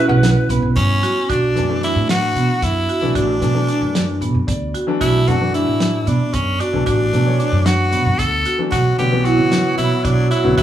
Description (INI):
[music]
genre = progressive instrumental, band music in an uneven meter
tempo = 226 BPM (eighths)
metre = 7/8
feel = straight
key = B minor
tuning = A4 = 440 Hz
[part]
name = growling alto saxophone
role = second line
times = 0.0-1.0, 8.7-10.6 s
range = F#3 to B4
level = -22 LUFS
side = left 1 dB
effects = none
[part]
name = warm baby grand piano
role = accompaniment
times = 0.0-10.6 s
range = D3 to F#5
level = -23 LUFS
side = left 3 dB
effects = none
[part]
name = marimba with medium hard mallets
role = arpeggios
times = 0.0-10.6 s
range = B3 to F#4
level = -21 LUFS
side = right 2 dB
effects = none
[part]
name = upright bass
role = bass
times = 0.1-10.6 s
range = A1 to C#3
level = -19 LUFS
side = right 1 dB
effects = none
[part]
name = warm soul drum kit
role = drums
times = 0.2-10.6 s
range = hi-hat, kick drum, snare drum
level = -24 LUFS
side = right 1 dB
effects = none
[part]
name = raspy tenor saxophone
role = melody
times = 0.8-10.6 s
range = C#4 to A4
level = -20 LUFS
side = equal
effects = none
[sound]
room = light reverb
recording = small room ambience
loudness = -15 LUFS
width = side -11 dB against mid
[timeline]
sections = 0.0-1.3 A section; 1.3-10.6 B section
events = grand piano fill 4.2-5.0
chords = 0.0 Emadd9/B; 1.3 Bm7; 8.7 Esus2/B